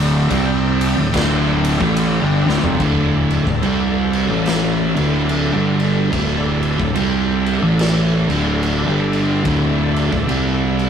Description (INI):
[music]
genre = stoner and doom metal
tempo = 72 BPM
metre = 4/4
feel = swing 61% on 8ths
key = unclear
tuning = A4 = 440 Hz
[part]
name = tonewheel organ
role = sustained chords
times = 0.0-10.9 s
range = D4 to E5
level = -28 LUFS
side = left 3 dB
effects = slow rotary speaker, chorus vibrato
[part]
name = overdriven electric guitar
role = riff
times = 0.0-2.8 s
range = D2 to C4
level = -23 LUFS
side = right 1 dB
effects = none
[part]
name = thick fuzz guitar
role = riff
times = 0.0-10.9 s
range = D2 to C4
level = -22 LUFS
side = left 5 dB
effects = distortion
[part]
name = thick fuzz guitar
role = riff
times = 0.0-10.9 s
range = D2 to C4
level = -18 LUFS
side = right 4 dB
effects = distortion
[part]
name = fuzz fingered electric bass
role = bass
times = 0.0-10.9 s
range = D1 to C2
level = -24 LUFS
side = left 1 dB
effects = overdrive
[part]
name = raw garage drum kit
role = drums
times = 0.3-10.9 s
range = crash cymbal, kick drum, ride cymbal, snare drum, toms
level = -23 LUFS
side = left 1 dB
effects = none
[sound]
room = moderate stone room reverb, RT60 1.1 s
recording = rough rehearsal-room recording, tube saturation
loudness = -15 LUFS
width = side -8 dB against mid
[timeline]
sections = 0.0-2.8 A section; 2.8-10.9 B section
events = drum fill 2.4-2.8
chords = 0.0 Dm; 2.8 D5